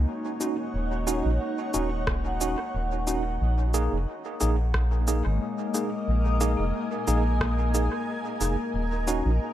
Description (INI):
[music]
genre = ambient dub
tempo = 90 BPM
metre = 4/4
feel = swing 53% on 16ths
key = Eb minor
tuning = A4 = 440 Hz
[part]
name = granular cloud pad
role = sustained chords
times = 0.0-9.5 s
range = Bb3 to Ab5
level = -32 LUFS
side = equal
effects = built-in reverb
[part]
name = vibraphone with medium mallets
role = arpeggios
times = 0.0-8.9 s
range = Ab3 to Gb5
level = -34 LUFS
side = left 3 dB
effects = dub echo
[part]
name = round analog bass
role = bass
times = 0.0-9.4 s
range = Eb1 to Bb1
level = -25 LUFS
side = equal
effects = none
[part]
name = tine electric piano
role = stabs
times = 0.4-9.3 s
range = Bb3 to Ab4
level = -31 LUFS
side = right 2 dB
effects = overdrive, fast stereo tremolo, dub echo
[part]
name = electronic cabasa and rim click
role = drums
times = 0.4-9.2 s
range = none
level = -34 LUFS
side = equal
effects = dub echo
[part]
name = electronic kick drum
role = drums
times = 2.1-7.6 s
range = none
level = -32 LUFS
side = equal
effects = none
[sound]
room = light reverb, digital ambience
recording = none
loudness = -24 LUFS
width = side -12 dB against mid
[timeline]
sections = 0.0-9.5 A section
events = none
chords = 0.0 Ebm7; 3.4 Bb7sus4; 8.7 Ebm7